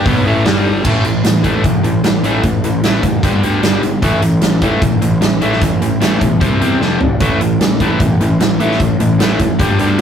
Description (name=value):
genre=hard rock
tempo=151 BPM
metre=4/4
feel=straight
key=A minor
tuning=A4 = 443 Hz
part: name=overdriven electric guitar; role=riff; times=0.0-10.0 s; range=F2 to C4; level=-14 LUFS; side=equal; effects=none
part: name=fuzz picked electric bass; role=bass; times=0.0-10.0 s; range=E1 to E2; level=-19 LUFS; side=equal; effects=overdrive
part: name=big rock drum kit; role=drums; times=0.1-10.0 s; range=crash cymbal, hi-hat, kick drum, snare drum, toms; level=-16 LUFS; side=equal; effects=none
room=moderate small room reverb, RT60 0.5 s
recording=rough rehearsal-room recording, tube saturation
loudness=-11 LUFS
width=side -8 dB against mid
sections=0.9-10.0 A section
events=drum fill 6.8-7.2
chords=0.5 G5; 0.9 A5; 3.2 G5; 4.0 A5; 6.4 C5; 6.8 F5; 7.2 A5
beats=0.06 0.46 | 0.85 1.25 1.65 2.04 | 2.44 2.84 3.23 3.63 | 4.03 4.42 4.82 5.22 | 5.62 6.02 6.41 6.81 | 7.21 7.61 8.01 8.40 | 8.80 9.20 9.60 9.99